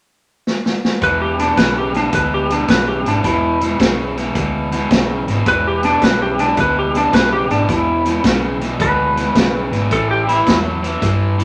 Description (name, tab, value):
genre	electric blues shuffle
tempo	108 BPM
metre	4/4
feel	swing 67% on 8ths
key	unclear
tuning	A4 = 440 Hz
part	swinging big-band drum kit	drums	0.5-11.4 s	hi-hat, kick drum, snare drum	-21 LUFS	equal	none
part	clean lap steel guitar	melody	1.0-10.6 s	D4 to B4	-19 LUFS	equal	none
part	overdriven semi-hollow guitar	riff	1.0-11.4 s	E2 to F#3	-23 LUFS	equal	none
part	vintage muted fingered electric bass	bass	1.0-11.4 s	E1 to G2	-26 LUFS	equal	none
room	moderate large studio reverb, RT60 1.2 s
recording	none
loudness	-16 LUFS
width	mono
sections	0.0-1.0 A section; 1.0-11.4 B section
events	drum fill 0.5-1.0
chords	0.0 N.C.; 1.0 E7(no3); 9.9 A7(no3)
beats	0.46 | 1.01 1.57 2.13 2.68 | 3.24 3.79 4.35 4.91 | 5.46 6.02 6.57 7.13 | 7.69 8.24 8.80 9.35 | 9.91 10.46 11.02